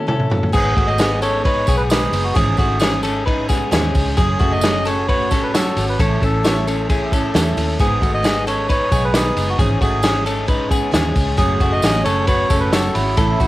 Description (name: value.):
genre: jangly indie pop.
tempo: 133 BPM.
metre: 4/4.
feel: straight.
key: unclear.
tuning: A4 = 440 Hz.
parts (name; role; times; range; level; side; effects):
picked steel-string acoustic guitar; accompaniment; 0.0-13.5 s; G#2 to C#5; -25 LUFS; right 4 dB; cassette tape.
direct-recorded clean electric guitar; arpeggios; 0.0-13.5 s; A3 to C#5; -22 LUFS; left 4 dB; cassette tape.
vintage drum kit; drums; 0.1-13.5 s; crash cymbal, hi-hat, kick drum, ride cymbal, snare drum, toms; -19 LUFS; equal; cassette tape.
melodica; melody; 0.5-13.5 s; E4 to D#5; -21 LUFS; right 1 dB; cassette tape.
string machine, cellos; sustained chords; 0.5-13.5 s; A3 to E6; -32 LUFS; equal; none.
vintage muted fingered electric bass; bass; 0.5-13.5 s; F#1 to E2; -22 LUFS; equal; none.
tambourine; percussion; 0.5-13.5 s; none; -34 LUFS; right 4 dB; none.
room: little or no reverb.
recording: home recording on cassette.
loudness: -15 LUFS.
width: side -16 dB against mid.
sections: 0.5-13.5 A section.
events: break 0.0-0.5; drum fill 0.0-0.5.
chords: 0.0 A6; 0.5 G#m; 2.4 C#madd9/G#; 4.2 F#madd9; 6.0 A; 7.8 G#m; 9.6 C#madd9/G#; 11.4 F#madd9.